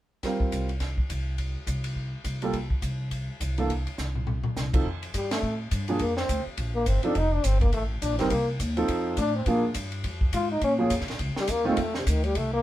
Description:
jazz, small-group swing and bop; 208 BPM; 4/4; swing 59% on 8ths; F mixolydian; A4 = 441 Hz
warm concert grand piano; accompaniment; 0.2-11.8 s; Eb3 to Bb4; -27 LUFS; right 2 dB
compact cocktail drum kit; drums; 0.2-12.4 s; crash cymbal, hi-hat, kick drum, ride cymbal, snare drum, toms; -31 LUFS; equal
upright bass; bass; 0.5-12.6 s; F1 to Bb2; -29 LUFS; equal
clear trombone; melody; 5.2-12.6 s; C3 to F4; -27 LUFS; left 2 dB
moderate studio ambience, RT60 0.5 s; band playing live in one room; -24 LUFS; side -14 dB against mid
0.2-4.8 A section; 4.8-12.6 B section
drum fill 4.0-4.6; band accent 5.3
0.2 C7sus4; 2.5 N.C.; 4.8 F; 6.0 Bb; 7.2 F; 8.3 Cm; 8.9 F7; 9.5 Bb7; 10.6 Bbm; 11.8 F7

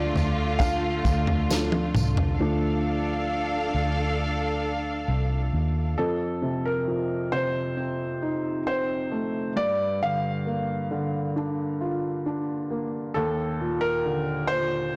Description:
pop ballad; 67 BPM; 4/4; straight; A4 = 441 Hz
clear concert grand piano; melody; 0.0-15.0 s; A4 to F5; -31 LUFS; equal
warm upright piano; accompaniment; 0.0-15.0 s; Eb2 to A4; -31 LUFS; equal
warm studio string section; sustained chords; 0.0-5.9 s; D3 to F5; -32 LUFS; equal
vintage muted fingered electric bass; bass; 0.0-5.9 s; C2 to Eb2; -29 LUFS; equal
natural country drum kit; drums; 0.2-2.4 s; kick drum, snare drum, toms; -28 LUFS; equal; soft clipping on snare
tambourine; percussion; 0.2-2.2 s; -41 LUFS; equal
moderate concert hall reverb, RT60 2.1 s; blown-out, overdriven recording, overdrive; -26 LUFS; mono
0.0-2.4 A section; 2.4-6.0 B section; 6.0-15.0 C section
drum fill 1.5-2.4; upright piano solo 2.4-6.0
0.0 Dm; 6.0 F7; 9.6 Gm7; 13.1 Ebmaj7(no3)

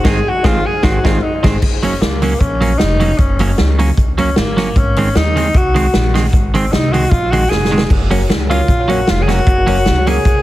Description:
ska; 153 BPM; 4/4; swing 54% on 8ths; A4 = 440 Hz
warm tenor saxophone; melody; 0.0-10.4 s; Bb3 to Ab4; -18 LUFS; equal; dub echo, plate reverb
clean electric guitar; accompaniment; 0.0-10.2 s; Eb3 to Db4; -18 LUFS; right 3 dB; plate reverb
dark upright piano; stabs; 0.0-1.6, 8.1-10.2 s; Eb4 to Db5; -24 LUFS; left 5 dB; dub echo, plate reverb
upright bass; bass; 0.0-10.4 s; F1 to Eb2; -17 LUFS; equal
swinging big-band drum kit; drums; 0.0-10.4 s; crash cymbal, hi-hat, kick drum, snare drum; -16 LUFS; equal
light reverb; heavily compressed radio sound; -11 LUFS; side -15 dB against mid
0.0-1.6 A section; 1.6-10.4 A section
tenor saxophone solo 0.0-1.6, 1.6-10.4; band accent 0.1-1.6; drum fill 7.5-7.9
0.0 Ab; 1.6 Gb; 4.8 Ab; 7.9 Gb

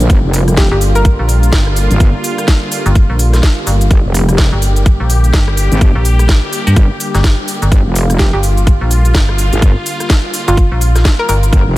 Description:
bass house; 126 BPM; 4/4; swing 60% on 16ths; G minor; A4 = 441 Hz
sweeping resonant pad; sustained chords; 0.0-11.8 s; D3 to G4; -20 LUFS; equal; chorus, sidechain pumping
wobble bass; bass; 0.0-11.8 s; F1 to Ab1; -13 LUFS; equal; chorus, overdrive, sidechain pumping
garage drum kit; drums; 0.0-11.6 s; cabasa, hi-hat, rim click, snare drum; -19 LUFS; equal
electronic kick drum; drums; 0.1-11.6 s; -9 LUFS; equal; overdrive
hollow square pluck; melody; 0.6-1.4, 8.2-11.4 s; F4 to Bb4; -20 LUFS; equal; chorus, ping-pong delay
metallic FM bass; bass; 0.7-11.5 s; G1 to G2; -11 LUFS; equal; overdrive, sidechain pumping
digital ambience; -9 LUFS; side -17 dB against mid
0.0-11.8 A section
0.0 Gm

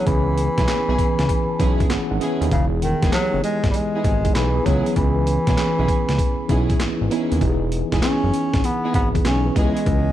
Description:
R&B, new jack swing; 98 BPM; 4/4; swing 67% on 16ths; A4 = 440 Hz
clear bass clarinet; melody; 0.0-10.1 s; C#3 to C#4; -23 LUFS; equal
mellow tine electric piano; accompaniment; 0.0-10.1 s; E3 to B5; -24 LUFS; equal; medium stereo tremolo
fat analog bass; bass; 0.1-10.1 s; E1 to D#2; -22 LUFS; equal
breakbeat sampler-style drum kit; drums; 0.1-10.1 s; handclaps, hi-hat, kick drum, snare drum; -22 LUFS; equal
warm studio string section; stabs; 0.6-9.8 s; B3 to G#4; -30 LUFS; right 5 dB; ping-pong delay
little or no reverb; dark, warm production; -17 LUFS; side -12 dB against mid
0.0-10.1 A section
tine electric piano fill 0.7-2.5
0.0 C#m7; 2.5 Emaj7; 4.7 C#m7; 7.4 Emaj7; 9.6 C#m7

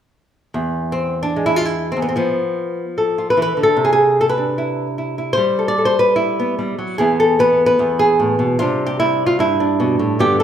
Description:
flamenco; free time; A4 = 440 Hz
flamenco guitar; solo; 0.5-10.4 s; E2 to D5; -15 LUFS; equal
moderate recital hall reverb, RT60 1.4 s; recorded in a church or concert hall; -15 LUFS; side -9 dB against mid
0.6-7.0 A section; 7.0-10.4 B section
0.6 E; 2.2 F; 3.8 Cadd9; 5.4 Gadd9; 7.0 E; 8.6 Csus2

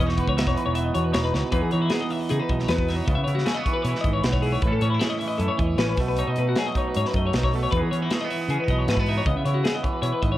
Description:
math rock and midwest emo; 155 BPM; 4/4; straight; E major; A4 = 444 Hz
twangy electric guitar; accompaniment; 0.0-10.4 s; E2 to A4; -28 LUFS; right 4 dB
twelve-string electric guitar; arpeggios; 0.0-10.4 s; E4 to E5; -27 LUFS; left 5 dB; analog delay, plate reverb
picked electric bass; bass; 0.0-10.4 s; E1 to E3; -25 LUFS; equal
modern studio drum kit; drums; 0.1-10.3 s; hi-hat, kick drum, snare drum; -27 LUFS; equal
light reverb; worn, warbling old tape, cassette tape, warbly pitch drift; -21 LUFS; side -14 dB against mid
0.0-1.5 A section; 1.5-10.4 B section
drum fill 1.3
0.0 E5; 1.5 Emaj7; 3.1 C#m7; 4.6 A; 6.0 B7; 7.7 Emaj7; 9.3 C#m7

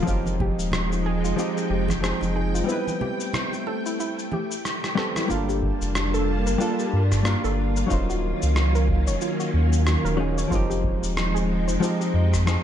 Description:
sunset chillout; 92 BPM; 4/4; swing 58% on 16ths; A4 = 440 Hz
hollow-body jazz guitar; accompaniment; 0.0-12.6 s; F3 to C5; -28 LUFS; left 2 dB; auto-pan, tape echo, shimmer reverb
soft string machine; sustained chords; 0.0-12.6 s; Eb3 to A5; -28 LUFS; equal; ensemble chorus, shimmer reverb
soft round pluck; arpeggios; 0.0-12.1 s; E4 to Db5; -32 LUFS; right 2 dB; chorus, tape echo, shimmer reverb
warm sub bass; bass; 0.1-12.6 s; Eb1 to G2; -24 LUFS; equal
electronic kick drum; drums; 0.1-12.4 s; -28 LUFS; equal
electronic shaker and rim click; drums; 0.1-12.6 s; -31 LUFS; equal
congas and bongos; percussion; 0.3-5.3 s; -34 LUFS; right 4 dB
moderate plate reverb, RT60 1.6 s; dark, warm production, nothing above 10.9 kHz; -21 LUFS; side -10 dB against mid
0.0-5.3 A section; 5.3-12.6 B section
break 2.7-5.3; drum fill 4.6-5.3
0.1 Fm9; 2.7 Am9; 5.3 Gm9; 7.9 Ebm9; 10.5 Fm9

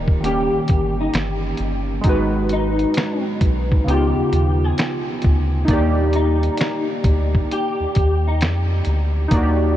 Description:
lo-fi hip hop; 66 BPM; 4/4; swing 66% on 16ths; Eb major; A4 = 440 Hz
warbly lo-fi synth keys; accompaniment; 0.0-9.8 s; Db3 to D5; -22 LUFS; equal; chorus, low-pass filter
soft dub sub bass; bass; 0.0-9.8 s; D1 to F2; -20 LUFS; equal
lo-fi sampler-style drum kit; drums; 0.1-9.6 s; finger snaps, hi-hat, kick drum, snare drum; -21 LUFS; equal
electric guitar through a small old amp; melody; 0.2-8.4 s; Eb4 to Ab4; -25 LUFS; left 2 dB; ensemble chorus, low-pass filter, diffuse ambient delay
light reverb; cassette tape; -16 LUFS; side -12 dB against mid
0.0-9.8 A section
0.2 Eb7; 2.0 Abm7; 3.9 Db9; 5.7 Ebmaj7

